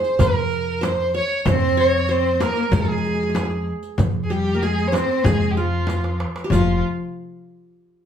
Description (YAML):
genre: Arabic maqam ensemble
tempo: 95 BPM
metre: 4/4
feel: straight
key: F minor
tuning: A4 = 440 Hz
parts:
  - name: warm violin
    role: melody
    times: 0.0-6.8 s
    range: F4 to Db5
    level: -22 LUFS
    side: right 2 dB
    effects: plate reverb
  - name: qanun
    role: second line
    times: 0.0-6.8 s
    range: F4 to Db5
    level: -29 LUFS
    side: right 2 dB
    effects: none
  - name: darbuka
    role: percussion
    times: 0.0-6.8 s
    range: none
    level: -28 LUFS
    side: right 3 dB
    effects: none
  - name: riq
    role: percussion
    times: 0.0-6.8 s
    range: none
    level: -33 LUFS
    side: equal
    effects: none
  - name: upright bass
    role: bass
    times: 0.2-6.8 s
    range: F1 to F2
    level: -24 LUFS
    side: left 1 dB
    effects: none
  - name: frame drum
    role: percussion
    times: 0.2-6.8 s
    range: none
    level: -24 LUFS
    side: left 2 dB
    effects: none
  - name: clear cello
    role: second line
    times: 1.5-6.8 s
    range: F3 to Db4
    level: -26 LUFS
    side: left 4 dB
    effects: none
room: wet studio reverb, RT60 0.6 s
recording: heard from further back in the room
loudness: -18 LUFS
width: side -8 dB against mid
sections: 0.0-6.5 A section; 6.5-8.1 B section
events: drum fill 5.9-6.5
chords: none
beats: 0.20 0.83 | 1.46 2.09 2.73 3.36 | 3.99 4.62 5.25 5.88 | 6.52